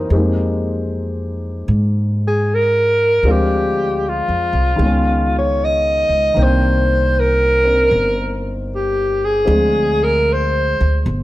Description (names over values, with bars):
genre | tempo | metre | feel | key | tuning
jazz ballad | 77 BPM | 4/4 | swing 67% on 8ths | unclear | A4 = 441 Hz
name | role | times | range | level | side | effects
breathy alto saxophone | melody | 0.0-11.1 s | Eb4 to Eb5 | -16 LUFS | equal | none
dark baby grand piano | accompaniment | 0.0-11.1 s | Eb3 to G5 | -22 LUFS | left 2 dB | none
upright bass | bass | 0.0-11.2 s | G1 to Ab2 | -19 LUFS | equal | none
room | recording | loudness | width
moderate large studio reverb, RT60 1.4 s | none | -14 LUFS | side -16 dB against mid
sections
0.0-11.2 A section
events
alto saxophone solo 0.0-11.2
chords
0.1 Fm11; 3.2 Dm7b5; 4.8 Db9; 6.4 Cm9; 9.5 Dm7b5